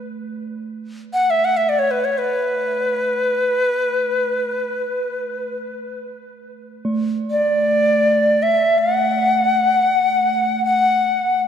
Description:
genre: world meditative, free-time meditation music.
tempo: free time.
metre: none.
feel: none.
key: unclear.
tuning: A4 = 440 Hz.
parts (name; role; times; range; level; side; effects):
bronze singing bowl; texture; 0.0-11.5 s; A3; -28 LUFS; right 5 dB; none.
bright Native American-style cedar flute; melody; 1.1-11.4 s; B4 to F#5; -16 LUFS; left 1 dB; ping-pong delay.
room: wet church reverb, RT60 2.8 s.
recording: dark, warm production.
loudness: -16 LUFS.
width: side -8 dB against mid.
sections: 0.0-6.4 A section; 6.4-11.5 A section.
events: none.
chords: none.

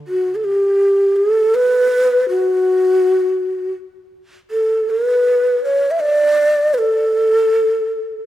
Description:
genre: persian.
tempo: 54 BPM (dotted quarters).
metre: 6/8.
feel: straight.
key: D dastgah mahur.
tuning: A4 = 440 Hz.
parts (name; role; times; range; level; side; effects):
breathy mellow ney; melody; 0.1-8.2 s; F#4 to E5; -14 LUFS; equal; none.
room: light reverb.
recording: none.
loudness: -13 LUFS.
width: side -13 dB against mid.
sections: 0.1-8.3 A section.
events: none.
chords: none.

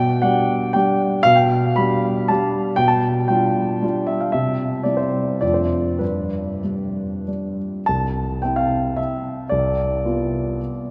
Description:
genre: classical, romantic triple-time dance for piano with dotted rhythms.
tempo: 92-125 BPM.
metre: 3/4.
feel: rubato.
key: C major.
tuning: A4 = 436 Hz.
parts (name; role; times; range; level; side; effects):
dark grand piano; solo; 0.0-10.9 s; C2 to B5; -20 LUFS; equal; none.
room: wet cathedral reverb, RT60 5.8 s.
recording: recorded in a church or concert hall.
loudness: -20 LUFS.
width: mono.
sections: 0.0-7.9 A section; 7.9-10.9 B section.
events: none.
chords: 0.0 G/B; 2.8 G7/B; 4.3 C; 5.4 Dm/F; 6.0 G; 7.9 C; 9.5 Bdim.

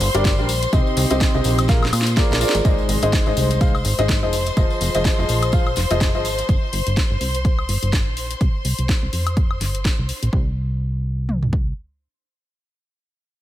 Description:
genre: piano house.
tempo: 125 BPM.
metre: 4/4.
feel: swing 57% on 16ths.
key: C minor.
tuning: A4 = 440 Hz.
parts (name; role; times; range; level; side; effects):
rich studio violin section; sustained chords; 0.0-10.3 s; C5 to C6; -27 LUFS; left 2 dB; sidechain pumping.
plucky analog bass; bass; 0.0-11.7 s; F1 to Bb2; -22 LUFS; equal; sidechain pumping.
house drum kit; drums; 0.0-10.3 s; hi-hat, snare drum, woodblock; -26 LUFS; left 1 dB; overdrive.
tambourine; percussion; 0.0-6.5 s; none; -33 LUFS; left 6 dB; analog delay.
clear upright piano; riff; 0.1-6.2 s; C3 to F5; -22 LUFS; left 1 dB; sidechain pumping, analog delay.
house drum kit; drums; 0.2-11.7 s; kick drum, toms; -19 LUFS; equal; overdrive.
impact; sound effects; 2.8-4.6 s; none; -30 LUFS; right 1 dB; none.
room: digital ambience.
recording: echo-heavy mix.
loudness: -17 LUFS.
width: side -13 dB against mid.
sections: 0.0-2.6 A section; 2.6-10.3 B section; 10.3-13.4 C section.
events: drop 0.0-2.6; drum fill 1.7-2.6; impact 2.6-4.6; filter sweep on analog synth bass 2.6-10.3.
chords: 0.0 Gm; 0.7 Cm; 1.7 Bb7; 2.6 Ab; 4.3 Fm7; 6.5 Gm; 8.4 C5; 10.3 N.C..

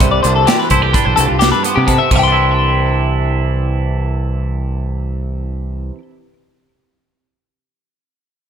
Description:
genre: math rock and midwest emo.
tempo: 256 BPM (eighths).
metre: 9/8.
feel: straight.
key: C major.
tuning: A4 = 439 Hz.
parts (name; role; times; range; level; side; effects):
twangy electric guitar; accompaniment; 0.0-6.1 s; G2 to G4; -19 LUFS; right 9 dB; slapback echo.
twelve-string electric guitar; arpeggios; 0.0-6.0 s; F4 to C6; -16 LUFS; left 7 dB; digital delay, slapback echo.
growling fingered electric bass; bass; 0.0-5.9 s; B1 to C3; -17 LUFS; equal; overdrive.
modern studio drum kit; drums; 0.0-2.2 s; hi-hat, kick drum, snare drum, splash cymbal; -16 LUFS; right 1 dB; none.
room: light reverb, small room ambience.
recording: none.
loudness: -12 LUFS.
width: side -8 dB against mid.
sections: 0.0-2.1 A section; 2.1-6.3 B section.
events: none.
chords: 0.0 Cmaj9; 2.1 Cadd9.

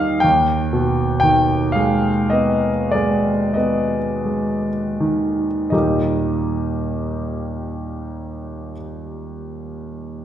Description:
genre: classical, romantic nocturne for solo piano.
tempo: 25-41 BPM (dotted quarters).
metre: 9/8.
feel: rubato.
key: Eb major.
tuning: A4 = 440 Hz.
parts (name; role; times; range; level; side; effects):
clear concert grand piano; solo; 0.0-10.2 s; Eb2 to Bb5; -18 LUFS; equal; none.
room: wet recital hall reverb, RT60 1.6 s.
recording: heard from further back in the room.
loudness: -17 LUFS.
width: side -10 dB against mid.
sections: 0.0-5.7 A section; 5.7-10.2 B section.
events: slowing down 0.0-5.7.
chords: 0.2 Abm/Eb; 5.7 Eb.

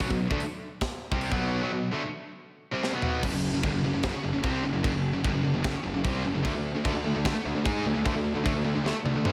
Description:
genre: heavy metal.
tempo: 149 BPM.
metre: 4/4.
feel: straight.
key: F# minor.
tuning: A4 = 440 Hz.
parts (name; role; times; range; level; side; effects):
distorted electric guitar; riff; 0.0-3.2, 6.5-9.3 s; B2 to G#4; -35 LUFS; equal; overdrive.
heavy high-gain guitar; riff; 0.0-9.3 s; F#2 to G#4; -33 LUFS; equal; distortion, slapback echo.
fuzz picked electric bass; bass; 0.0-9.3 s; F#1 to G#2; -35 LUFS; equal; overdrive.
tight metal drum kit; drums; 0.0-9.3 s; crash cymbal, hi-hat, kick drum, snare drum, toms; -34 LUFS; equal; none.
fuzz guitar; riff; 3.2-9.3 s; F#2 to G#4; -35 LUFS; equal; distortion.
room: moderate lush hall reverb, RT60 1.9 s, small room ambience.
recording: big arena sound.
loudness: -28 LUFS.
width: mono.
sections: 0.0-3.2 A section; 3.2-9.3 B section.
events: drum fill 2.8-3.2, 8.9-9.3.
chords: 0.0 B5; 3.2 F#5; 6.5 D5.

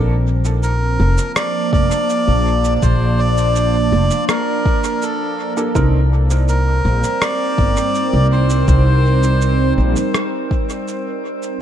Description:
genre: ambient dub.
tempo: 82 BPM.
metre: 4/4.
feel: straight.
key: C dorian.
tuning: A4 = 443 Hz.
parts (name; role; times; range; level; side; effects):
warbly tape-like pad; sustained chords; 0.0-11.6 s; F3 to A5; -21 LUFS; right 2 dB; chorus, built-in reverb, phaser, vintage 12-bit sampler grit.
warm upright piano; stabs; 0.0-0.1, 5.6-6.0 s; Bb3 to Bb4; -26 LUFS; right 2 dB; vintage 12-bit sampler grit, dub echo.
upright bass; bass; 0.0-9.9 s; F1 to C2; -15 LUFS; equal; none.
electronic shaker and rim click; drums; 0.4-11.6 s; none; -26 LUFS; right 1 dB; dub echo.
melodica; melody; 0.6-9.7 s; A4 to D5; -21 LUFS; equal; dub echo.
electronic kick drum; drums; 1.7-10.7 s; none; -18 LUFS; equal; none.
drifting glass-harmonics texture; texture; 6.6-11.6 s; C4 to C5; -28 LUFS; right 4 dB; chorus, built-in reverb.
room: light reverb, digital ambience.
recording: dark, warm production.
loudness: -14 LUFS.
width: side -10 dB against mid.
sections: 0.0-11.6 A section.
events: fade-out 9.7-11.6.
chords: 0.0 Bbmaj7; 5.8 Cm7.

